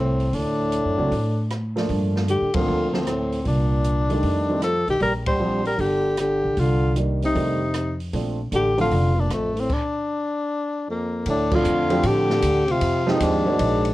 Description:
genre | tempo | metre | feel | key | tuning
jazz, small-group swing and bop | 154 BPM | 4/4 | swing 66% on 8ths | Bb major | A4 = 440 Hz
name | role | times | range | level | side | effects
warm tenor saxophone | melody | 0.0-13.9 s | A3 to C5 | -23 LUFS | left 2 dB | none
mellow trombone | second line | 0.0-13.9 s | F2 to G3 | -26 LUFS | right 2 dB | none
upright bass | bass | 0.0-13.9 s | F1 to A2 | -25 LUFS | equal | none
open jazz drum kit | drums | 0.2-13.9 s | crash cymbal, hi-hat, kick drum, ride cymbal, rim click, snare drum | -31 LUFS | equal | none
warm upright piano | accompaniment | 1.0-8.9, 11.5-13.9 s | Eb3 to Db5 | -25 LUFS | right 2 dB | none
room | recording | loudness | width
light reverb | worn, warbling old tape, cassette tape, warbly pitch drift | -20 LUFS | side -17 dB against mid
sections
0.0-11.3 A section; 11.3-13.9 B section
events
band accent 2.5, 5.2, 11.4; stop 9.7-11.3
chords
0.3 D; 1.9 Gm11; 3.5 Cm9; 4.2 F13; 5.0 Bb69; 5.8 Gm; 6.6 Cm9; 7.4 F13; 8.1 Bbmaj7; 11.3 Dm7; 12.8 Fm7

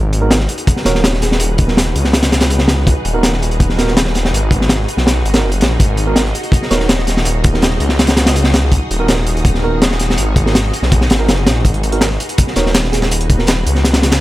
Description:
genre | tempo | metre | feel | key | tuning
drum and bass, jungle | 164 BPM | 4/4 | straight | G# minor | A4 = 438 Hz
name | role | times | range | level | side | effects
soft string machine | sustained chords | 0.0-14.2 s | D#4 to D#5 | -23 LUFS | left 1 dB | ensemble chorus
detuned saw bass | bass | 0.0-14.2 s | D#1 to C#2 | -16 LUFS | equal | none
crunchy breakbeat drum kit | drums | 0.1-14.2 s | hi-hat, kick drum, snare drum | -14 LUFS | equal | none
mellow tine electric piano | stabs | 0.2-13.5 s | B3 to A#4 | -23 LUFS | right 5 dB | dub echo
thumb-piano-like synth pluck | melody | 0.9-1.5, 6.7-7.1, 12.6-13.2 s | G#4 to C#5 | -24 LUFS | right 2 dB | chorus, dub echo
breakbeat sampler-style drum kit | drums | 11.7-14.2 s | hi-hat, snare drum, tambourine | -23 LUFS | right 2 dB | high-pass filter on perc, high-pass filter on hats, high-pass filter on snare
room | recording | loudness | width
small room ambience | none | -11 LUFS | side -16 dB against mid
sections
0.0-14.2 A section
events
none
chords
0.0 G#m7

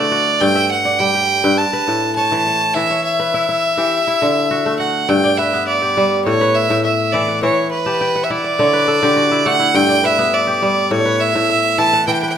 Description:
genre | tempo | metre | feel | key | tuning
west african traditional, West African string and xylophone music | 103 BPM | 4/4 | straight | G lydian | A4 = 440 Hz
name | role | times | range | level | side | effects
rich fiddle | melody | 0.0-12.4 s | B4 to A5 | -15 LUFS | right 1 dB | none
kora | arpeggios | 0.0-12.4 s | G2 to A5 | -18 LUFS | left 1 dB | none
room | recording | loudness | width
moderate recital hall reverb, RT60 1.4 s | minimal, uncompressed stereo recording | -13 LUFS | side -8 dB against mid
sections
0.0-5.1 A section; 5.1-12.4 B section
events
kora fill 7.9-9.7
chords
0.4 G5; 1.6 A; 2.7 E5; 3.9 D; 5.1 G; 6.3 A5; 7.4 Em; 8.6 D5; 9.7 G; 10.9 A5

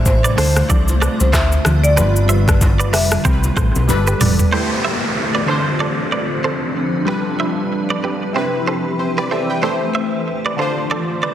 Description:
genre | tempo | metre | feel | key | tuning
afrobeats | 94 BPM | 4/4 | swing 58% on 16ths | unclear | A4 = 440 Hz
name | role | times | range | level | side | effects
marimba with medium mallets | melody | 0.0-4.2 s | C5 to E5 | -22 LUFS | left 1 dB | tape echo
warm analog keys | accompaniment | 0.0-11.3 s | C3 to G5 | -22 LUFS | left 1 dB | chorus, phaser
granular cloud pad | sustained chords | 0.0-11.3 s | C3 to C5 | -24 LUFS | equal | built-in reverb
hollow-body short-scale fingered electric bass | bass | 0.0-4.4 s | E1 to D2 | -16 LUFS | equal | none
afro-pop drum kit | drums | 0.1-4.5 s | handclaps, hi-hat, kick drum, rim click, shaker, toms | -17 LUFS | equal | none
bongos and congas | percussion | 0.1-4.4 s | none | -26 LUFS | left 1 dB | none
direct-recorded clean electric guitar | riff | 0.2-11.3 s | G4 to E5 | -23 LUFS | right 5 dB | spring reverb, tape echo
downlifter | sound effects | 4.5-9.6 s | none | -25 LUFS | equal | none
room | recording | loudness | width
moderate recital hall reverb, RT60 1.7 s | dense, heavily limited modern master | -14 LUFS | side -11 dB against mid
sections
0.0-4.5 A section; 4.5-11.3 B section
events
drum fill 3.9-4.5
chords
0.4 Dm7; 2.0 G7; 3.3 Cmaj7; 3.9 Gadd9; 4.5 Am7; 5.5 Dm7; 7.1 G7; 8.4 Cmaj7; 10.6 Dm7

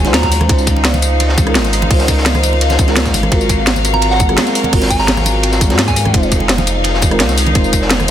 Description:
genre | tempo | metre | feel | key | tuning
liquid drum and bass | 170 BPM | 4/4 | straight | unclear | A4 = 438 Hz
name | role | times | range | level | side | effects
mellow FM electric piano | accompaniment | 0.0-8.1 s | Ab3 to Db5 | -19 LUFS | right 1 dB | chorus, vintage 12-bit sampler grit, dub echo
warm symphonic string section | sustained chords | 0.0-8.1 s | Gb3 to F5 | -20 LUFS | left 2 dB | sidechain pumping
warm sub bass | bass | 0.0-8.1 s | F1 to Ab2 | -17 LUFS | equal | none
congas | percussion | 0.0-8.1 s | none | -24 LUFS | right 2 dB | none
soft synth bell | melody | 0.1-0.3, 3.9-6.2 s | Gb5 to Bb5 | -21 LUFS | right 2 dB | chorus, phaser, digital delay
crunchy breakbeat drum kit | drums | 0.1-8.1 s | hi-hat, ride cymbal, snare drum | -22 LUFS | equal | high-pass filter on cymbals, high-pass filter on hats, high-pass filter on snare, high-pass filter on room
garage drum kit | drums | 0.1-8.1 s | hi-hat, ride cymbal, rim click, snare drum, tambourine | -17 LUFS | equal | overdrive
electronic kick drum | drums | 0.2-7.8 s | none | -15 LUFS | equal | overdrive
room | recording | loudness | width
light reverb, small room ambience | dense, heavily limited modern master | -10 LUFS | side -10 dB against mid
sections
0.0-8.1 A section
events
none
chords
0.5 Dbmaj9; 3.3 Ab13; 6.1 Fm7

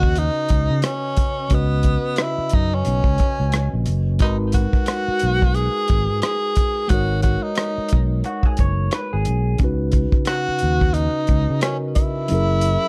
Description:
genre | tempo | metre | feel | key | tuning
R&B, neo-soul | 89 BPM | 4/4 | swing 57% on 16ths | unclear | A4 = 439 Hz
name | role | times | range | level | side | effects
breathy tenor saxophone | melody | 0.0-12.9 s | B3 to G#4 | -26 LUFS | equal | none
mellow tine electric piano | accompaniment | 0.0-12.9 s | C#3 to D#5 | -29 LUFS | equal | none
fingered electric bass | bass | 0.0-12.8 s | F#1 to C#3 | -23 LUFS | equal | none
warm soul drum kit | drums | 0.0-12.8 s | hi-hat, kick drum, rim click | -22 LUFS | equal | none
electric guitar through a small old amp | second line | 8.3-9.6 s | F#4 to C#5 | -30 LUFS | equal | none
room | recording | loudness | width
light reverb | dark, warm production | -20 LUFS | mono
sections
0.0-12.9 A section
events
kick muted 12.3-12.9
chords
0.0 C#7sus4; 4.2 G#m9; 9.6 C#7sus4; 12.3 F#9

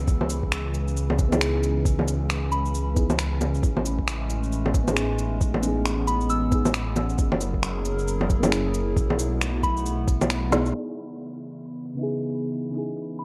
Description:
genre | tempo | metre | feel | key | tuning
future garage | 135 BPM | 4/4 | swing 60% on 16ths | C# minor | A4 = 440 Hz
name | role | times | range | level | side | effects
warbly tape-like pad | sustained chords | 0.0-13.2 s | C#3 to A#4 | -34 LUFS | equal | chorus, built-in reverb, sidechain pumping
dark detuned saw bass | bass | 0.0-10.7 s | F#1 to C#2 | -29 LUFS | equal | sidechain pumping
electronic kick drum | drums | 0.1-10.2 s | none | -26 LUFS | equal | overdrive
electronic shaker, bongos, cabasa, finger snaps and snare drum | drums | 0.1-13.2 s | none | -29 LUFS | equal | none
muted felt-like synth keys | accompaniment | 1.3-13.2 s | C#3 to G#4 | -32 LUFS | equal | chorus, sidechain pumping, dub echo
soft synth bell | melody | 2.5-2.7, 6.1-6.9, 9.6-9.8, 13.2 s | B5 to E6 | -36 LUFS | equal | chorus, phaser, dub echo
room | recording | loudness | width
light reverb, digital ambience | low-pass filter | -25 LUFS | mono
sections
0.0-10.7 A section; 10.7-13.2 B section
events
drum fill 10.5; band accent 10.5; filter sweep on ambient pad 10.7-13.2; filter sweep 10.7-13.2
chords
0.0 C#m7; 3.6 Amaj9#11; 7.2 F#9; 9.0 B7sus4; 10.7 C#m7

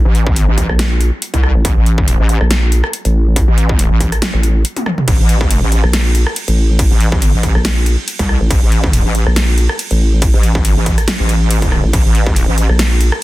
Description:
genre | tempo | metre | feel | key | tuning
heavy wobble dubstep | 140 BPM | 4/4 | swing 55% on 16ths, half-time | A phrygian | A4 = 444 Hz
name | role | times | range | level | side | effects
vowel-sweep wobble bass | bass | 0.0-13.1 s | A1 to Bb1 | -12 LUFS | equal | chorus, overdrive
wobble bass | bass | 0.1-12.7 s | A1 to C2 | -14 LUFS | equal | chorus, overdrive
big-room dance drum kit | drums | 0.1-13.2 s | crash cymbal, hi-hat, rim click, snare drum, toms | -19 LUFS | equal | none
electronic kick drum | drums | 0.3-12.3 s | none | -14 LUFS | equal | distortion
room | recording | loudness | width
little or no reverb | dense, heavily limited modern master | -11 LUFS | side -17 dB against mid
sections
0.0-13.2 A section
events
break 4.6-5.1; drum fill 4.8-5.1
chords
none

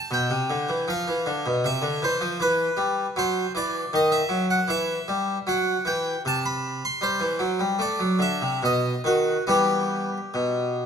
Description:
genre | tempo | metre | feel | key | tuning
classical, baroque-style suite movement for harpsichord | 69-80 BPM | 3/4 | rubato | E minor | A4 = 440 Hz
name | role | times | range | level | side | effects
harpsichord | solo | 0.0-10.9 s | B2 to C6 | -22 LUFS | equal | none
room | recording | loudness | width
moderate scoring stage reverb, RT60 1.8 s | close, detailed microphones | -22 LUFS | side -7 dB against mid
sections
0.0-10.9 A section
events
none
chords
0.1 G7/B; 1.6 C; 2.4 Em; 3.9 D#m; 4.7 Em; 6.3 N.C.; 7.0 Em; 7.8 F#dim; 8.6 B; 9.5 Em

